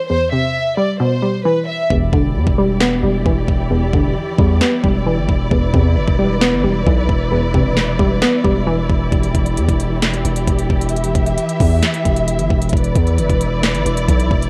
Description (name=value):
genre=hip hop, trap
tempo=133 BPM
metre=4/4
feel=half-time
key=E minor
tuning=A4 = 440 Hz
part: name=warm studio violin section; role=melody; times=0.0-1.9 s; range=B4 to E5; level=-20 LUFS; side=equal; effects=none
part: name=hollow square pluck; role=accompaniment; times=0.0-9.1 s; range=E2 to B3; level=-20 LUFS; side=equal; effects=chorus, low-pass filter, cassette tape
part: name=dark studio string section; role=sustained chords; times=1.9-14.5 s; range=E3 to E5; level=-24 LUFS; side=equal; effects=cassette tape
part: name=long sustained 808-style bass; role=bass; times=1.9-14.5 s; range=E1 to E2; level=-20 LUFS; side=equal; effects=none
part: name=trap drum kit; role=drums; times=1.9-14.5 s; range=handclaps, hi-hat, kick drum, snare drum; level=-21 LUFS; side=equal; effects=overdrive, cassette tape
room=light reverb, digital ambience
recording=home recording on cassette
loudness=-16 LUFS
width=mono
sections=0.0-1.9 A section; 1.9-14.5 B section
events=hi-hats muted 1.9-9.1; filter sweep on synth pluck 1.9-9.1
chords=0.0 Cmaj7/E; 1.9 Em7; 5.5 Cmaj7/E; 9.1 Em7; 12.7 Cmaj7/E (rootless)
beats=| 0.10 0.55 1.00 1.45 | 1.90 2.35 2.81 3.26 | 3.71 4.16 4.61 5.06 | 5.51 5.96 6.42 6.87 | 7.32 7.77 8.22 8.67 | 9.12 9.57 10.02 10.47 | 10.93 11.38 11.83 12.28 | 12.73 13.18 13.63 14.08